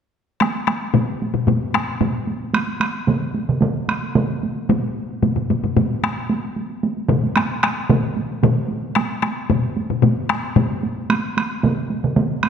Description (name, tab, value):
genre	japanese traditional, taiko drum ensemble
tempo	112 BPM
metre	4/4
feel	straight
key	none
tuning	none
part	solo taiko drums	percussion	0.4-12.5 s	none	-22 LUFS	right 4 dB	none
part	taiko ensemble	percussion	0.4-10.7 s	none	-20 LUFS	left 5 dB	none
part	solo taiko drums	percussion	2.5-12.5 s	none	-21 LUFS	right 3 dB	none
room	wet scoring stage reverb, RT60 1.8 s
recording	none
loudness	-18 LUFS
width	side -7 dB against mid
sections	0.4-12.5 A section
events	none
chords	none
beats	| 0.41 0.94 1.48 2.01 | 2.55 3.08 3.62 4.15 | 4.69 5.22 5.76 6.29 | 6.83 7.36 7.90 8.43 | 8.96 9.50 10.03 10.56 | 11.10 11.63 12.16